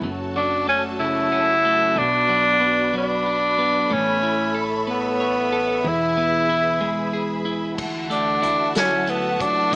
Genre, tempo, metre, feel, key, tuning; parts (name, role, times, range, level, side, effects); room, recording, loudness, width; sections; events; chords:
six-eight pop ballad; 62 BPM (dotted quarters); 6/8; straight; A4 = 440 Hz
twelve-string electric guitar; accompaniment; 0.0-9.8 s; F#2 to C#5; -26 LUFS; right 1 dB
clear studio string section; sustained chords; 0.0-9.8 s; F#4 to B5; -28 LUFS; equal
upright bass; bass; 0.0-9.8 s; E1 to D2; -36 LUFS; equal
clear tenor saxophone; melody; 0.4-9.8 s; B3 to E4; -19 LUFS; equal
unplugged drum kit; drums; 7.8-9.8 s; crash cymbal, hi-hat, kick drum, snare drum; -28 LUFS; left 1 dB
light reverb, studio ambience; small speaker sound; -18 LUFS; side -29 dB against mid
0.0-7.8 A section; 7.8-9.8 B section
0.0 F#m; 2.0 Bm; 3.9 Aadd9; 5.8 E; 7.8 Dadd9